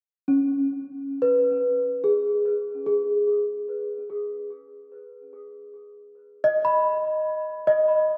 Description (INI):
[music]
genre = ambient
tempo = free time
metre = none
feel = none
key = unclear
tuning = A4 = 439 Hz
[part]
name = small celesta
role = solo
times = 0.3-8.2 s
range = C#4 to B5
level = -24 LUFS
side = equal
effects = analog delay
[sound]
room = wet lush hall reverb, RT60 2.8 s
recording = dreamy mix soaked in reverb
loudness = -24 LUFS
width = mono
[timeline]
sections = 0.0-8.2 A section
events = none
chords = 0.0 G#madd11/C#; 4.4 G#m